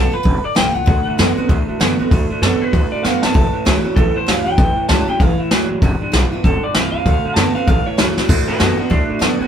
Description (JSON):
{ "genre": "rockabilly", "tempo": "194 BPM", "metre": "4/4", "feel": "swing 62% on 8ths", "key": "D mixolydian", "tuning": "A4 = 444 Hz", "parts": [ { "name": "electric guitar through a small old amp", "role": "melody", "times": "0.0-9.5 s", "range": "D4 to A5", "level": "-21 LUFS", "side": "equal", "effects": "none" }, { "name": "picked steel-string acoustic guitar", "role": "accompaniment", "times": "0.0-9.5 s", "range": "E2 to F#4", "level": "-25 LUFS", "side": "left 5 dB", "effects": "none" }, { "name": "upright bass", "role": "bass", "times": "0.0-9.5 s", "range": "G1 to G2", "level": "-20 LUFS", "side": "equal", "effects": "none" }, { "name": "jazz brush drum kit", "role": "drums", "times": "0.3-9.3 s", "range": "crash cymbal, hi-hat, kick drum, snare drum", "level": "-17 LUFS", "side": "equal", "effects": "none" }, { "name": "electric guitar through a small old amp", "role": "riff", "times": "0.9-9.5 s", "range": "G2 to B3", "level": "-21 LUFS", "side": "right 4 dB", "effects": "none" } ], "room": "moderate studio ambience, RT60 0.4 s", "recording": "band playing live in one room", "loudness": "-13 LUFS", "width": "side -8 dB against mid", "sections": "0.0-8.3 A section; 8.3-9.5 B section", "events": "clean electric guitar solo 0.0-8.3; drum fill 3.0-3.3, 8.1", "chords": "0.0 G7; 0.9 D7; 3.3 A7; 5.8 G7; 7.1 D7; 7.7 A7; 8.3 D7" }